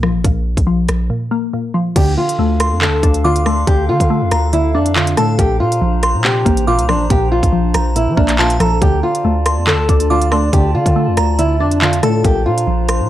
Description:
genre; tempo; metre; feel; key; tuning
hip hop, drill; 140 BPM; 4/4; half-time; D minor; A4 = 440 Hz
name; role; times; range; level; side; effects
glassy wavetable pluck; accompaniment; 0.0-13.1 s; Bb2 to D4; -19 LUFS; equal; chorus, low-pass filter
long sustained 808-style bass; bass; 0.0-13.1 s; A1 to F3; -17 LUFS; equal; none
drill drum kit; drums; 0.0-13.0 s; crash cymbal, handclaps, hi-hat, kick drum, rim click; -17 LUFS; equal; none
nylon-string guitar; melody; 2.0-13.1 s; D4 to A4; -18 LUFS; equal; low-pass filter
warbly tape-like pad; sustained chords; 2.2-13.1 s; D4 to Bb5; -26 LUFS; equal; chorus, built-in reverb
glassy synth bell; second line; 2.6-13.1 s; A5 to D6; -23 LUFS; right 1 dB; chorus, analog delay
room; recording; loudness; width
digital ambience; dry, gritty hardware recording; -12 LUFS; side -13 dB against mid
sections
0.0-2.0 A section; 2.0-13.1 B section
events
break 1.1-2.0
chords
0.0 Bbsus2; 2.0 Dm; 5.4 Bbadd9; 8.8 Dm; 12.2 Bbadd9

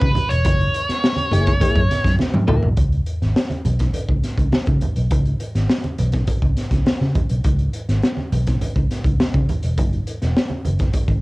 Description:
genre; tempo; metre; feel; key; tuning
funk; 103 BPM; 4/4; straight; C# dorian; A4 = 440 Hz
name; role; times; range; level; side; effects
octave-fuzz lead guitar; melody; 0.0-2.1 s; B4 to C#5; -21 LUFS; right 1 dB; distortion, cassette tape
vintage muted fingered electric bass; bass; 0.0-11.2 s; E1 to C#3; -19 LUFS; equal; none
raw garage drum kit; drums; 0.0-11.2 s; hi-hat, kick drum, snare drum, toms; -20 LUFS; equal; none
congas; percussion; 0.0-11.1 s; none; -26 LUFS; right 2 dB; none
direct-recorded clean electric guitar; accompaniment; 1.3-2.7 s; A#3 to A#4; -22 LUFS; left 3 dB; none
room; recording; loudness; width
light reverb; home recording on cassette; -17 LUFS; side -22 dB against mid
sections
0.0-2.8 A section; 2.8-11.2 B section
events
drum fill 2.2-2.8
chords
0.4 F#9; 2.8 C#7(no3); 9.8 N.C.

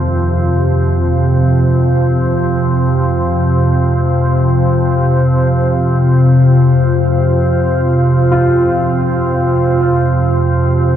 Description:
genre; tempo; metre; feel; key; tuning
dark ambient drone; free time; none; none; unclear; A4 = 439 Hz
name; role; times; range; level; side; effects
deep dark ambient pad; sustained chords; 0.0-11.0 s; F4 to F5; -19 LUFS; right 2 dB; chorus, built-in reverb
dark concert grand piano; arpeggios; 0.0-11.0 s; Eb2 to F4; -21 LUFS; left 1 dB; diffuse ambient delay
organ-like drone; drone; 0.0-11.0 s; F2 to C3; -11 LUFS; equal; ensemble chorus, built-in reverb
room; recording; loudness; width
wet huge ambient reverb, RT60 8.3 s; dark, warm production; -10 LUFS; side -10 dB against mid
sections
0.0-11.0 A section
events
none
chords
0.0 F5

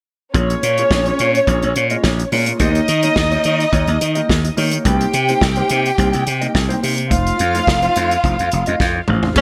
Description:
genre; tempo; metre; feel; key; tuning
disco; 106 BPM; 4/4; straight; Bb dorian; A4 = 441 Hz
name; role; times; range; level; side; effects
warm studio string section; second line; 0.3-9.4 s; Db4 to G5; -21 LUFS; equal; none
mellow electric guitar; accompaniment; 0.3-9.4 s; A3 to Eb5; -26 LUFS; equal; lush chorus
slap bass; bass; 0.3-9.4 s; F1 to Eb3; -20 LUFS; equal; none
warm soul drum kit; drums; 0.3-9.4 s; crash cymbal, hi-hat, kick drum, snare drum, toms; -23 LUFS; equal; none
growling tenor saxophone; melody; 9.4 s; Db4; -12 LUFS; equal; none
dark studio string section; sustained chords; 9.4 s; Db3 to F4; -23 LUFS; equal; none
room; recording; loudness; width
light reverb, studio ambience; none; -16 LUFS; mono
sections
0.3-9.4 A section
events
drum fill 8.8-9.4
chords
0.3 Bbm7; 2.6 Eb7; 4.9 Cm7; 7.1 F7

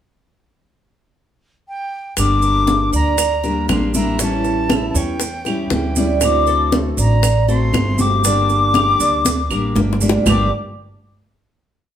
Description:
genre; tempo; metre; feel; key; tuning
latin, Cuban son and guajira; 119 BPM; 4/4; straight; G harmonic minor; A4 = 442 Hz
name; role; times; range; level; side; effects
silver concert flute; melody; 1.7-10.5 s; G5 to D6; -20 LUFS; left 3 dB; none
fingerpicked steel-string acoustic guitar; accompaniment; 2.2-10.5 s; G2 to G4; -21 LUFS; left 2 dB; none
upright bass; bass; 2.2-10.5 s; G1 to E2; -20 LUFS; right 1 dB; none
bongos; percussion; 2.2-10.4 s; none; -25 LUFS; left 4 dB; none
claves; percussion; 2.2-10.4 s; none; -27 LUFS; right 7 dB; none
congas; percussion; 2.2-10.4 s; none; -22 LUFS; equal; none
maracas; percussion; 2.2-10.4 s; none; -26 LUFS; right 5 dB; none
Cuban tres; arpeggios; 2.4-10.5 s; G3 to D5; -24 LUFS; right 6 dB; none
room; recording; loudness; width
wet large studio reverb, RT60 0.9 s; band playing live in one room; -14 LUFS; side -10 dB against mid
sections
0.1-2.2 pickup bar; 2.2-10.3 A section; 10.3-11.9 final chord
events
drum fill 9.3-10.3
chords
0.1 N.C.; 2.2 Gm; 4.2 A7; 6.2 D7; 8.2 Gm; 10.3 G5

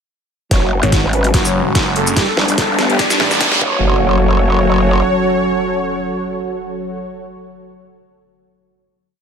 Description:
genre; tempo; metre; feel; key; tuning
heavy wobble dubstep; 145 BPM; 4/4; swing 54% on 16ths, half-time; F# minor; A4 = 440 Hz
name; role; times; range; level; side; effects
soft supersaw; melody; 0.5-7.0 s; D4 to D5; -21 LUFS; equal; low-pass filter, digital delay
lush unison pad; sustained chords; 0.5-7.0 s; F#3 to C#5; -21 LUFS; left 1 dB; chorus, sidechain pumping
mellow brass ensemble; stabs; 0.5-7.0 s; F#3 to G4; -22 LUFS; right 4 dB; digital delay
growl bass; bass; 0.5-5.0 s; F#1 to G#1; -16 LUFS; equal; chorus, overdrive
dubstep drum kit; drums; 0.5-3.6 s; hi-hat, shaker, snare drum; -19 LUFS; equal; overdrive, high-pass filter on snare, high-pass filter on hats, high-pass filter on perc, high-pass filter on room
electronic kick drum; drums; 0.5-3.7 s; none; -18 LUFS; equal; overdrive
riser and impact; sound effects; 1.9-7.1 s; none; -22 LUFS; equal; none
snarling distorted saw bass; bass; 0.8-3.6 s; F#1 to A1; -18 LUFS; equal; distortion, overdrive
room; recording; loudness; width
light reverb; high-pass filter; -13 LUFS; side -7 dB against mid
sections
0.5-3.8 build; 3.8-7.1 final hit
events
build-up 0.5-3.8; drum fill 0.5-3.8; filter sweep on analog synth pad 0.5-3.8; filter sweep on supersaw synth 0.5-3.8; filter sweep 0.5-3.8; riser 1.9-3.8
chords
0.5 F#sus2; 2.2 G; 3.6 F#m

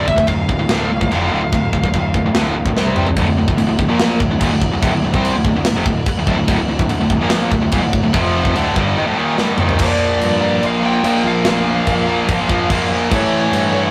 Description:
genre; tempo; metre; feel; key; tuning
heavy metal; 145 BPM; 4/4; straight; D minor; A4 = 440 Hz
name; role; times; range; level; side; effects
high-gain lead guitar; melody; 0.0-2.7, 9.8-13.9 s; C#5 to G5; -24 LUFS; equal; distortion
distorted electric guitar; riff; 0.0-13.9 s; D2 to C4; -22 LUFS; equal; distortion
tight distorted guitar; riff; 0.0-13.9 s; D2 to C4; -22 LUFS; equal; distortion
fuzz picked electric bass; bass; 0.0-13.9 s; D1 to G2; -24 LUFS; equal; overdrive
tight metal drum kit; drums; 0.1-13.6 s; china cymbal, crash cymbal, kick drum, snare drum, toms; -21 LUFS; equal; none
room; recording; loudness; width
light reverb; rough rehearsal-room recording, warm saturation; -16 LUFS; mono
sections
0.0-3.2 A section; 3.2-9.8 B section; 9.8-13.9 C section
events
drum fill 2.8-3.2, 9.4-9.8; half time 9.8-13.9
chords
0.0 Dm; 2.8 C5; 3.2 Dm; 8.1 F5; 8.6 D5; 9.8 Bb; 13.1 A

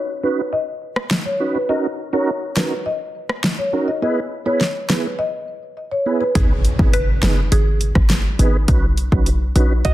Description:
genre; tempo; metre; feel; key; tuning
dancehall; 103 BPM; 4/4; straight; G# minor; A4 = 440 Hz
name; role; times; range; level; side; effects
marimba with medium mallets; melody; 0.2-6.3 s; B4 to D#5; -23 LUFS; left 2 dB; low-pass filter, digital delay
mellow tonewheel organ; accompaniment; 0.2-9.7 s; B3 to B4; -23 LUFS; right 3 dB; chorus vibrato, slow rotary speaker, sidechain pumping, low-pass filter
deep house drum kit; drums; 1.0-9.9 s; hi-hat, kick drum, rim click, snare drum; -19 LUFS; equal; overdrive
mallet-like synth pluck; second line; 6.4-8.6 s; G#4 to B4; -27 LUFS; right 2 dB; chorus, digital delay
short 808-style bass; bass; 6.4-9.9 s; F#1 to B1; -17 LUFS; equal; none
impact; sound effects; 6.4-8.7 s; none; -25 LUFS; equal; none
nylon-string guitar; arpeggios; 9.8-9.9 s; F#4 to D#5; -20 LUFS; right 6 dB; low-pass filter
room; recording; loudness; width
light reverb, digital ambience; dense, heavily limited modern master; -16 LUFS; side -15 dB against mid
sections
0.0-6.4 A section; 6.4-9.9 B section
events
impact 6.4-8.7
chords
0.0 Badd9; 1.7 D#m7; 4.0 E; 6.4 G#m; 8.7 Badd9

